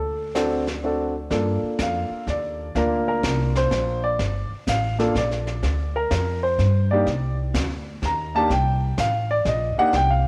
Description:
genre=jazz piano trio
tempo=125 BPM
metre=3/4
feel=swing 66% on 8ths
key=G minor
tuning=A4 = 439 Hz
part: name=warm grand piano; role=melody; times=0.0-10.3 s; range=Bb3 to Bb5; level=-25 LUFS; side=equal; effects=none
part: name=upright bass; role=bass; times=0.0-10.3 s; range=G1 to G2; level=-27 LUFS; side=equal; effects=none
part: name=jazz brush drum kit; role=drums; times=0.3-10.3 s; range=brushed snare drum, hi-hat, kick drum, snare drum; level=-32 LUFS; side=equal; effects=cassette tape
room=light reverb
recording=home recording on cassette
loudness=-23 LUFS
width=mono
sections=0.0-1.3 A section; 1.3-10.3 B section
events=grand piano solo 1.3-10.3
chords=0.0 D7; 1.3 Gm9; 7.1 Cmadd9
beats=0.35 0.83 | 1.31 1.79 2.27 | 2.75 3.23 3.71 | 4.19 4.67 5.15 | 5.63 6.11 6.58 | 7.06 7.54 8.02 | 8.50 8.98 9.46 | 9.94

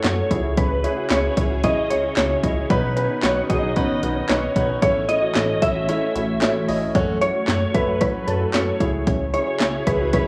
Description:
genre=synth-pop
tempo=113 BPM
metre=4/4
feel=straight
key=unclear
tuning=A4 = 440 Hz
part: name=shimmering bell with halo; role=melody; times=0.0-10.3 s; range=A4 to E5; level=-26 LUFS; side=equal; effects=ensemble chorus, slapback echo
part: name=warm baby grand piano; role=accompaniment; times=0.0-10.3 s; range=C#4 to E5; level=-28 LUFS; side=equal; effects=none
part: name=soft string machine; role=sustained chords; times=0.0-10.3 s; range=C#3 to G#4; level=-31 LUFS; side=equal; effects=ensemble chorus
part: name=soft round pluck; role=arpeggios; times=0.0-10.3 s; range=B3 to A4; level=-32 LUFS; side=equal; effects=chorus, slapback echo
part: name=chorused synth bass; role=bass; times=0.0-10.1 s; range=A1 to F#2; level=-29 LUFS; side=equal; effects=none
part: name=punchy analog drum machine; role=drums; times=0.0-10.3 s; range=handclaps, hi-hat, kick drum, snare drum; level=-26 LUFS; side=equal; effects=overdrive
room=moderate spring reverb, RT60 2.2 s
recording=worn, warbling old tape, cassette tape, warbly pitch drift, small room reverb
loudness=-21 LUFS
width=mono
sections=0.0-10.3 A section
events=none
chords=0.3 C#m; 2.7 Badd9; 4.8 A; 6.9 F#m; 8.8 C#m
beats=0.05 | 0.58 1.11 1.64 2.17 | 2.70 3.23 3.76 4.29 | 4.82 5.36 5.89 6.42 | 6.95 7.48 8.01 8.54 | 9.07 9.60 10.13

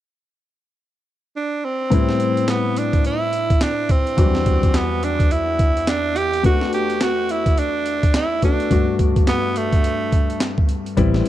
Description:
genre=R&B, new jack swing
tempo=106 BPM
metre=4/4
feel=swing 61% on 16ths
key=A dorian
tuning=A4 = 440 Hz
part: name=raspy tenor saxophone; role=melody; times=1.4-10.4 s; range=A3 to G4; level=-22 LUFS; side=right 3 dB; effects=none
part: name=warm grand piano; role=accompaniment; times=1.9-11.3 s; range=E2 to B4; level=-22 LUFS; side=left 4 dB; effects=none
part: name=breakbeat sampler-style drum kit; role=drums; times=1.9-11.3 s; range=handclaps, hi-hat, kick drum, snare drum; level=-19 LUFS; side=equal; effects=none
part: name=fretless electric bass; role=bass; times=11.0-11.2 s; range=A1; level=-18 LUFS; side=equal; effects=wide subtle chorus
room=light reverb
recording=dark, warm production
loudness=-16 LUFS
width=side -13 dB against mid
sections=0.0-1.9 A section; 1.9-11.0 B section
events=none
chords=0.0 N.C.; 1.9 Am9; 4.2 Em9; 6.4 Bm7; 8.7 Gmaj9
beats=0.22 0.78 1.35 | 1.92 2.48 3.05 3.61 | 4.18 4.75 5.31 5.88 | 6.44 7.01 7.58 8.14 | 8.71 9.27 9.84 10.41 | 10.97

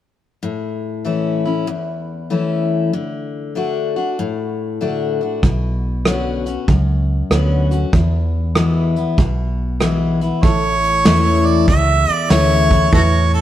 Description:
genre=honky-tonk and classic country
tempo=96 BPM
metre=4/4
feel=swing 65% on 8ths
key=A major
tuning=A4 = 440 Hz
part: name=picked steel-string acoustic guitar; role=accompaniment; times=0.4-13.4 s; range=E2 to F#4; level=-19 LUFS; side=left 4 dB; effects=none
part: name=vintage muted fingered electric bass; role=bass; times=5.4-13.4 s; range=A1 to E2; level=-18 LUFS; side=equal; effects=none
part: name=vintage brush drum kit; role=drums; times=5.4-13.4 s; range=hi-hat, kick drum, rim click, snare drum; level=-17 LUFS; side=right 1 dB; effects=none
part: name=clear harmonica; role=melody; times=10.4-13.4 s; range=F#4 to E5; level=-17 LUFS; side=right 4 dB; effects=none
part: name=clear upright piano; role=accompaniment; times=10.4-13.4 s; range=A3 to B4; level=-29 LUFS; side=right 6 dB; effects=none
room=light reverb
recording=heard from further back in the room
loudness=-15 LUFS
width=side -12 dB against mid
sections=0.4-10.4 A section; 10.4-13.4 B section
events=none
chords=0.4 A; 2.9 D; 5.4 Bmadd9; 7.9 E; 10.4 A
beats=| 0.42 1.05 1.68 2.30 | 2.93 3.55 4.18 4.81 | 5.43 6.06 6.68 7.31 | 7.93 8.56 9.18 9.80 | 10.43 11.05 11.68 12.30 | 12.92

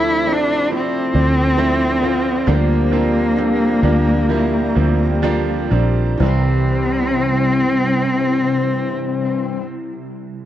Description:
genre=pop ballad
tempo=61-70 BPM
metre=4/4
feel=straight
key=C major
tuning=A4 = 442 Hz
part: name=warm cello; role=melody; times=0.0-9.6 s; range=Bb3 to E4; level=-18 LUFS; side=equal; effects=cassette tape
part: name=mellow French horn section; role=second line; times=0.0-9.6 s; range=G2 to E4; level=-27 LUFS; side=left 9 dB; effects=cassette tape
part: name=bright concert grand piano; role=accompaniment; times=0.0-10.5 s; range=C2 to F4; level=-24 LUFS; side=right 8 dB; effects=cassette tape
part: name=glassy FM pad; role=sustained chords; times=0.0-9.6 s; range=C3 to D6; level=-25 LUFS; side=equal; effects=ensemble chorus, built-in reverb, cassette tape
part: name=picked steel-string acoustic guitar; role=arpeggios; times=0.0-9.8 s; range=C3 to C5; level=-28 LUFS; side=left 10 dB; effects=cassette tape
part: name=fingered electric bass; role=bass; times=0.0-9.6 s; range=Bb1 to D2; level=-19 LUFS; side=equal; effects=none
room=light reverb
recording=home recording on cassette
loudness=-15 LUFS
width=side -12 dB against mid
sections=0.0-6.2 A section; 6.2-10.1 B section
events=slowing down 0.0-6.2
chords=0.0 Dm7; 2.5 Gm7/D; 6.2 C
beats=0.71 1.58 | 2.47 3.37 4.29 5.23 | 6.20 7.18 8.15 9.13

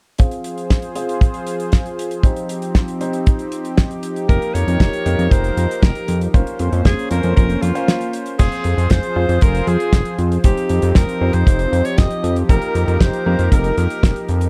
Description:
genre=italo disco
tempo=117 BPM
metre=4/4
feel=straight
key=F minor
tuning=A4 = 441 Hz
part: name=warm analog pad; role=sustained chords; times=0.2-14.5 s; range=F3 to C5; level=-27 LUFS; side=equal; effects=chorus
part: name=warm grand piano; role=stabs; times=0.2-14.5 s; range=Bb3 to C5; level=-30 LUFS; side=equal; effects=low-pass filter
part: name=damped 70s drum kit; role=drums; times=0.2-14.5 s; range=crash cymbal, hi-hat, snare drum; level=-24 LUFS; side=equal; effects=small room ambience
part: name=kick drum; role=drums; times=0.2-14.1 s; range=none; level=-15 LUFS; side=equal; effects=small room ambience
part: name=breathy alto saxophone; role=melody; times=4.3-14.3 s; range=F4 to Eb5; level=-26 LUFS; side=equal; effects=vintage 12-bit sampler grit, tape echo
part: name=fat analog bass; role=bass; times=4.3-14.5 s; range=F1 to F2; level=-20 LUFS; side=equal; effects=tube saturation
room=little or no reverb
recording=dry, close 1970s-style studio recording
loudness=-17 LUFS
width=mono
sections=0.2-8.4 A section; 8.4-14.5 B section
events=filter sweep on grand piano 0.2-8.4; break 7.9-8.4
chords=0.2 Fm; 2.2 Cm/F; 4.3 Eb/F; 6.3 Bbmadd9/F; 8.4 Fm; 10.4 Cm/F; 12.5 Eb/F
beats=| 0.19 0.70 1.21 1.73 | 2.24 2.75 3.26 3.78 | 4.29 4.80 5.32 5.83 | 6.34 6.85 7.37 7.88 | 8.39 8.90 9.42 9.93 | 10.44 10.96 11.47 11.98 | 12.49 13.01 13.52 14.03

